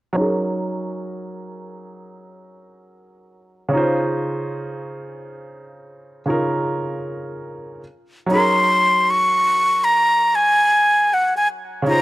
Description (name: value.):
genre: R&B.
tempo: 59 BPM.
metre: 4/4.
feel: swing 54% on 16ths.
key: unclear.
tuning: A4 = 440 Hz.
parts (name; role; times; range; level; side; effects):
clear baby grand piano; accompaniment; 0.1-12.0 s; Db3 to C5; -22 LUFS; right 1 dB; low-pass filter.
breathy concert flute; melody; 8.3-12.0 s; Gb5 to Db6; -14 LUFS; equal; none.
room: light reverb, small room ambience.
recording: dry, gritty hardware recording.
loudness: -16 LUFS.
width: side -17 dB against mid.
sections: 0.2-8.3 A section; 8.3-12.0 B section.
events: filter sweep on grand piano 0.2-8.3.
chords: 0.2 Gb69; 3.7 Dbmaj7; 7.8 N.C.; 8.3 Gb69.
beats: | 0.17 1.19 2.20 3.22 | 4.24 5.25 6.27 7.29 | 8.30 9.32 10.34 11.36.